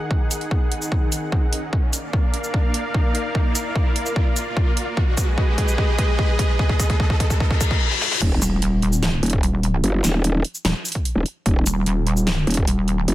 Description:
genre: heavy wobble dubstep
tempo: 148 BPM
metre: 4/4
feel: half-time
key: unclear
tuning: A4 = 440 Hz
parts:
  - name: supersaw pad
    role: sustained chords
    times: 0.0-7.8 s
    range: Eb3 to Gb5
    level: -27 LUFS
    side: equal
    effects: sidechain pumping, low-pass filter
  - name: riser, reverse cymbal and sub drop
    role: sound effects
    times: 0.0-9.8 s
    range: none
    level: -28 LUFS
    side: left 1 dB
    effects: none
  - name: electronic kick drum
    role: drums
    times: 0.1-12.7 s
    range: none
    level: -19 LUFS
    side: equal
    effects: none
  - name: dubstep drum kit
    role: drums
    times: 0.3-13.1 s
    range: crash cymbal, hi-hat, shaker, snare drum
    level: -25 LUFS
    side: right 1 dB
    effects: overdrive, high-pass filter on hats, high-pass filter on perc, high-pass filter on snare, high-pass filter on cymbals, high-pass filter on room
  - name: growl bass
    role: bass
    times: 8.2-13.1 s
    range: Eb1 to Gb1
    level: -19 LUFS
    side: equal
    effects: chorus, overdrive
  - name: pulsing pluck wobble bass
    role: bass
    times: 8.4-13.1 s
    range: Eb1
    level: -19 LUFS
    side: equal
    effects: chorus, overdrive
room: little or no reverb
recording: none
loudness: -18 LUFS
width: side -15 dB against mid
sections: 0.0-8.2 A section; 8.2-13.1 B section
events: build-up 0.0-8.2; riser 0.0-7.8; filter sweep on supersaw synth 0.0-8.2; drum fill 1.7-7.8, 7.9-8.2; reverse cymbal 7.4-8.2; drop 8.2-13.1; impact 8.2-9.8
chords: 0.0 Ebm; 1.7 Bb; 5.0 Abm; 8.2 N.C.

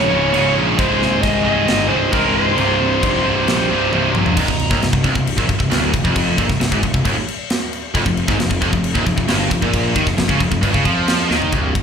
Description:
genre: heavy metal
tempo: 134 BPM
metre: 4/4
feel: straight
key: C phrygian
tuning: A4 = 440 Hz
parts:
  - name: bluesy overdriven lead guitar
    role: melody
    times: 0.0-4.1 s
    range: Bb4 to Eb5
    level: -20 LUFS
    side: right 1 dB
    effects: distortion, slapback echo, digital delay
  - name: high-gain distorted guitar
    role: riff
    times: 0.0-11.8 s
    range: C2 to Ab3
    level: -20 LUFS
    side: right 11 dB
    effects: distortion, slapback echo
  - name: high-gain distorted guitar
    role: riff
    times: 0.0-4.9, 7.9-11.5 s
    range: C2 to Ab4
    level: -24 LUFS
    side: equal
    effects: distortion, slapback echo
  - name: tight distorted guitar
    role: riff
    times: 0.0-11.8 s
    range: C2 to Ab3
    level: -22 LUFS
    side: left 11 dB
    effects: distortion, slapback echo
  - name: fuzz picked electric bass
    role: bass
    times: 0.0-11.8 s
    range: C1 to F2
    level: -21 LUFS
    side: equal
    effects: overdrive
  - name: tight metal drum kit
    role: drums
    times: 0.3-11.8 s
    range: crash cymbal, kick drum, ride cymbal, snare drum, toms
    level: -20 LUFS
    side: equal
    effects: none
room: little or no reverb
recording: live gig heard through the venue's PA, club reverb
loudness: -14 LUFS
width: side -7 dB against mid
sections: 0.0-4.4 A section; 4.4-11.5 B section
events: half time 0.0-4.4; drum fill 3.9-4.4, 11.3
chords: 0.0 Db; 0.8 Ab/C; 2.6 Cm; 7.9 Eb9

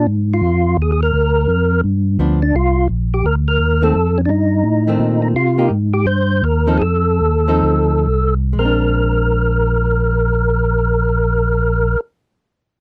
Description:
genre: jazz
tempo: 119-171 BPM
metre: 4/4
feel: swing 62% on 8ths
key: Bb mixolydian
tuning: A4 = 439 Hz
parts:
  - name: percussive tonewheel organ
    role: melody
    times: 0.0-12.0 s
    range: Db4 to C5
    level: -20 LUFS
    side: equal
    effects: slow rotary speaker, overdrive, chorus vibrato
  - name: tonewheel organ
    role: bass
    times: 0.0-12.0 s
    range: Bb1 to C3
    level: -18 LUFS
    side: equal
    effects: overdrive, chorus vibrato, stopped rotary speaker
  - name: hollow-body jazz guitar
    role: accompaniment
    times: 2.2-12.1 s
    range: Eb3 to A4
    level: -22 LUFS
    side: equal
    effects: none
room: little or no reverb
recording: dry, close 1970s-style studio recording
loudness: -16 LUFS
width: mono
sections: 0.0-2.5 A section; 2.5-8.6 B section; 8.6-12.6 C section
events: slowing down 5.4-8.6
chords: 0.0 Bb7(no3) (rootless); 1.1 Bb/D; 1.8 G7; 2.5 Cm7; 3.9 F7; 5.4 Cm7; 6.8 F7; 8.6 Bb9

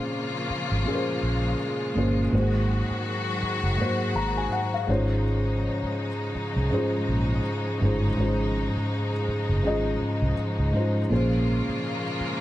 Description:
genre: contemporary R&B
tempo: 82 BPM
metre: 4/4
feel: swing 58% on 16ths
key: Db major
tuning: A4 = 440 Hz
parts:
  - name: felt-muted upright piano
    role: accompaniment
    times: 0.0-12.4 s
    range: Ab2 to Bb5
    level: -26 LUFS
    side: equal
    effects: none
  - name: rich studio string section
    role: sustained chords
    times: 0.0-12.4 s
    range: Db3 to Gb4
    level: -31 LUFS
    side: left 2 dB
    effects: none
  - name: vintage muted fingered electric bass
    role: bass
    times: 0.5-12.2 s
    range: Gb1 to Ab2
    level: -26 LUFS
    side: equal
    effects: none
room: small room ambience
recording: none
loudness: -23 LUFS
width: side -14 dB against mid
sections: 0.0-12.4 A section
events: felt piano fill 3.8-5.3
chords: 0.0 Bbm7; 2.3 Ab7; 4.9 Dbmaj9; 11.1 Bbm7

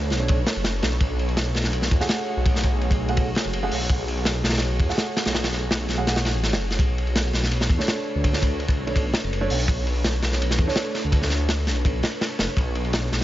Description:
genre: drum and bass, jungle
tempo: 166 BPM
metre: 4/4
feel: straight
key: B dorian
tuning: A4 = 435 Hz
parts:
  - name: ethereal airy pad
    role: sustained chords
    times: 0.0-13.2 s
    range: A3 to C#5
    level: -31 LUFS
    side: equal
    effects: ensemble chorus, built-in reverb
  - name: dark concert grand piano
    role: stabs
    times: 0.0-11.7 s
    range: A3 to F#5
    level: -31 LUFS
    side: right 3 dB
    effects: dub echo
  - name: detuned saw bass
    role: bass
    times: 0.0-13.2 s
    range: F#1 to E2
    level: -25 LUFS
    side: equal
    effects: none
  - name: crunchy breakbeat drum kit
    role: drums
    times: 0.1-13.2 s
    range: hi-hat, kick drum, ride cymbal, snare drum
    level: -23 LUFS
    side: equal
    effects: none
room: studio reverb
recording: nothing above 7.5 kHz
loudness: -20 LUFS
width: side -14 dB against mid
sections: 0.0-13.2 A section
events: none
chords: 0.0 Bm9; 1.0 F#madd9; 6.8 Bm9; 12.6 F#madd9

